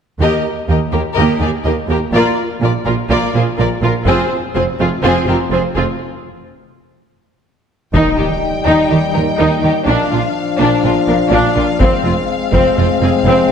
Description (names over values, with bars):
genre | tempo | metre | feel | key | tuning
cinematic, epic orchestral film score | 124 BPM | 4/4 | straight | Eb major | A4 = 440 Hz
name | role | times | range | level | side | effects
clear studio violin section | second line | 0.2-13.5 s | C4 to Eb5 | -19 LUFS | left 3 dB | none
clear symphonic viola section | accompaniment | 0.2-13.5 s | Bb3 to G4 | -18 LUFS | right 1 dB | none
clear symphonic double bass section | bass | 0.2-13.5 s | F1 to Eb2 | -20 LUFS | right 3 dB | none
rich symphonic cello section | bass | 0.2-13.3 s | Eb2 to Eb3 | -19 LUFS | right 2 dB | none
warm symphonic violin section | melody | 7.9-13.5 s | F5 to G5 | -22 LUFS | left 6 dB | none
warm French horn section | sustained chords | 7.9-13.5 s | F3 to Eb4 | -17 LUFS | left 4 dB | none
taiko ensemble | drums | 7.9-8.9, 11.8-12.8 s | none | -19 LUFS | equal | none
impact | sound effects | 7.9-9.9 s | none | -24 LUFS | left 1 dB | none
room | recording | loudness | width
wet scoring stage reverb, RT60 1.7 s | none | -12 LUFS | side -7 dB against mid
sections
0.2-7.9 A section; 7.9-13.5 B section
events
break 6.0-7.9; build-up 7.9-13.5; impact 7.9-9.9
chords
0.2 Eb; 2.1 Bb; 4.1 Fm; 6.0 N.C.; 7.9 Eb; 9.9 Bb; 11.8 Fm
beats
| 0.20 0.68 1.17 1.65 | 2.13 2.62 3.10 3.58 | 4.07 4.55 5.04 5.52 | 6.00 6.49 6.97 7.46 | 7.94 8.42 8.91 9.39 | 9.88 10.36 10.84 11.33 | 11.81 12.29 12.78 13.26